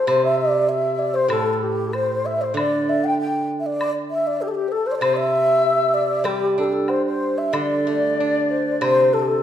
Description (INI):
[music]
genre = chinese traditional, Chinese chamber ensemble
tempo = 96 BPM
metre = 2/4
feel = rubato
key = unclear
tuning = A4 = 440 Hz
[part]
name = breathy low xiao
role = melody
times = 0.0-9.4 s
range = G4 to G5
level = -21 LUFS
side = left 1 dB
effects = none
[part]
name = xiao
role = second line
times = 0.0-9.4 s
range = G4 to G5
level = -24 LUFS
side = left 3 dB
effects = none
[part]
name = steel-string zither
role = accompaniment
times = 0.1-9.4 s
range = A2 to D4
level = -24 LUFS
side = right 3 dB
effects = none
[part]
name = woodblock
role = percussion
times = 0.1-9.0 s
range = none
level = -30 LUFS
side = left 2 dB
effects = none
[sound]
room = wet recital hall reverb, RT60 1.4 s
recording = minimal, uncompressed stereo recording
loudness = -18 LUFS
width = side -10 dB against mid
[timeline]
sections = 0.0-7.5 A section; 7.5-9.4 B section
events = none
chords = none